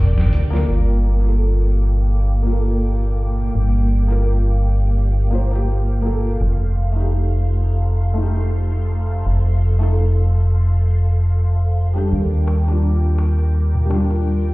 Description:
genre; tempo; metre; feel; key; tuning
trip hop; 84 BPM; 4/4; swing 56% on 16ths; G minor; A4 = 440 Hz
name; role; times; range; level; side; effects
string machine, cellos; sustained chords; 0.0-14.5 s; Bb3 to D6; -29 LUFS; right 1 dB; phaser, ensemble chorus
deep dub fingered electric bass; bass; 0.0-14.5 s; F1 to Eb2; -16 LUFS; equal; tube saturation
trip hop sampler-style drum kit; drums; 0.2-0.7 s; hi-hat, snare drum; -21 LUFS; equal; none
felt-muted upright piano; accompaniment; 0.5-14.5 s; G3 to C5; -26 LUFS; left 1 dB; harmonic tremolo, tape echo
darbuka; percussion; 12.1-14.4 s; none; -28 LUFS; left 1 dB; none
room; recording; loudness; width
little or no reverb; heard muffled through a wall, stone room reverb, EQ; -15 LUFS; side -21 dB against mid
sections
0.7-14.5 A section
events
filter sweep on string machine 0.7-14.5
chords
0.0 Bb; 0.7 Gm7; 6.4 F7; 12.1 Ebmaj7

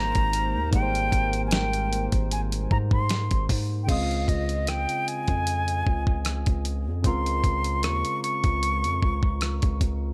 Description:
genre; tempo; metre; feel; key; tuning
contemporary R&B; 76 BPM; 4/4; swing 54% on 16ths; Db lydian; A4 = 440 Hz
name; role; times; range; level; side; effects
mellow concert flute; melody; 0.0-9.8 s; Eb5 to Db6; -31 LUFS; equal; delay
soft electric-piano-like synth keys; accompaniment; 0.0-10.1 s; Ab2 to Eb5; -35 LUFS; equal; chorus
hollow soft pad; sustained chords; 0.0-3.9 s; Bb3 to C5; -40 LUFS; equal; chorus
long sustained 808-style bass; bass; 0.0-10.1 s; Ab1 to Ab2; -30 LUFS; equal; none
dusty soul sampler-style drum kit; drums; 0.1-10.0 s; crash cymbal, hi-hat, kick drum, rim click, snare drum; -28 LUFS; equal; none
room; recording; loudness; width
little or no reverb; none; -25 LUFS; mono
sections
0.0-3.9 A section; 3.9-10.1 B section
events
none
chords
0.0 Abmaj9; 3.9 Dbmaj9

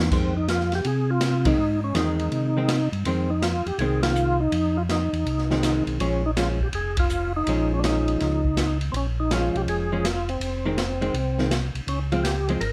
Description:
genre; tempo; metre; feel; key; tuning
soul jazz organ trio; 163 BPM; 4/4; swing 66% on 8ths; F minor; A4 = 440 Hz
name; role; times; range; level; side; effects
vintage hollow-body jazz guitar; accompaniment; 0.0-12.6 s; Eb3 to Db4; -30 LUFS; equal; none
mellow tonewheel organ; bass; 0.0-12.7 s; F1 to C3; -28 LUFS; equal; chorus vibrato, slow rotary speaker
percussive tonewheel organ; melody; 0.1-12.7 s; C4 to Bb4; -28 LUFS; equal; slow rotary speaker, overdrive, chorus vibrato
open jazz drum kit; drums; 0.1-12.7 s; crash cymbal, hi-hat, kick drum, ride cymbal, snare drum; -31 LUFS; equal; none
room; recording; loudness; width
light reverb; none; -24 LUFS; mono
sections
0.1-12.7 A section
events
band accent 1.4, 4.0, 6.9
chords
0.1 Fm7; 6.0 Bbm7; 10.4 Fm7; 11.9 Dbmaj7

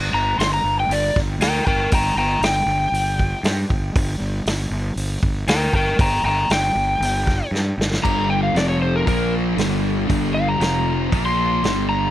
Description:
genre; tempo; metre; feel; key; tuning
blues rock power trio and southern rock; 118 BPM; 4/4; straight; G minor; A4 = 440 Hz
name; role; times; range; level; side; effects
fuzz fingered electric bass; bass; 0.0-12.1 s; F1 to G2; -23 LUFS; equal; overdrive
overdriven slide guitar; melody; 0.1-12.1 s; Bb4 to C6; -21 LUFS; left 1 dB; analog delay
vintage drum kit; drums; 0.4-11.8 s; crash cymbal, hi-hat, kick drum, snare drum; -23 LUFS; equal; none
fuzz guitar; riff; 8.0-12.1 s; F2 to Bb3; -21 LUFS; left 1 dB; distortion
room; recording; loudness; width
little or no reverb; none; -17 LUFS; side -13 dB against mid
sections
0.0-8.0 A section; 8.0-12.1 B section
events
electric slide guitar solo 0.0-8.0; drum fill 7.5-8.0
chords
0.0 Gm; 8.5 F5; 9.1 Bb5; 9.6 G5; 10.6 F5; 11.1 Bb5

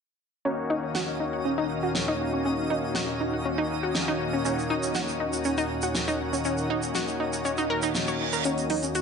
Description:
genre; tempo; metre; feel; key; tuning
progressive house; 120 BPM; 4/4; straight; Eb minor; A4 = 440 Hz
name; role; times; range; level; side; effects
lush unison pad; sustained chords; 0.7-9.0 s; Eb2 to Gb5; -34 LUFS; right 1 dB; chorus
analog pluck; arpeggios; 0.5-9.0 s; Db4 to Db5; -29 LUFS; equal; chorus, ping-pong delay
soft supersaw; stabs; 0.5-9.0 s; Eb3 to Db5; -30 LUFS; left 2 dB; low-pass filter, ping-pong delay
twinkling granular texture; texture; 0.8-8.5 s; Eb4 to Eb5; -38 LUFS; right 1 dB; built-in reverb
big-room dance drum kit; drums; 0.9-9.0 s; hi-hat, snare drum; -31 LUFS; right 1 dB; small room ambience
tube shaker; percussion; 4.5-9.0 s; none; -36 LUFS; right 6 dB; none
reverse cymbal and riser; sound effects; 7.8-9.0 s; none; -34 LUFS; right 7 dB; none
congas and bongos; percussion; 8.6-8.9 s; none; -36 LUFS; equal; small room ambience
room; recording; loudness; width
moderate digital room reverb, RT60 1.2 s; nothing above 10.4 kHz; -25 LUFS; side -6 dB against mid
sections
0.5-8.5 A section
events
filter sweep on synth pluck 0.5-8.5; reverse cymbal 7.8-8.5; riser 8.5-9.0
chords
0.5 Ebm7

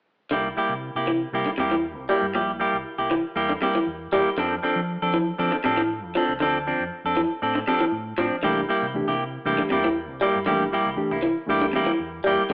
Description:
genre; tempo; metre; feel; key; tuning
afrobeat; 118 BPM; 4/4; swing 53% on 16ths; C mixolydian; A4 = 441 Hz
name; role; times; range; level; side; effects
electric guitar through a small old amp; arpeggios; 0.3-12.5 s; Bb2 to G3; -25 LUFS; equal; none
clean electric guitar; stabs; 0.3-12.4 s; F3 to A4; -23 LUFS; equal; spring reverb
fingered electric bass; bass; 0.3-12.5 s; Bb1 to F3; -35 LUFS; equal; none
reed electric piano; accompaniment; 8.4-12.5 s; E3 to G4; -27 LUFS; equal; none
room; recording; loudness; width
moderate large studio reverb, RT60 0.7 s; AM radio sound; -21 LUFS; side -29 dB against mid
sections
0.3-12.5 A section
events
none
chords
0.3 C7; 4.4 F6; 8.4 C7

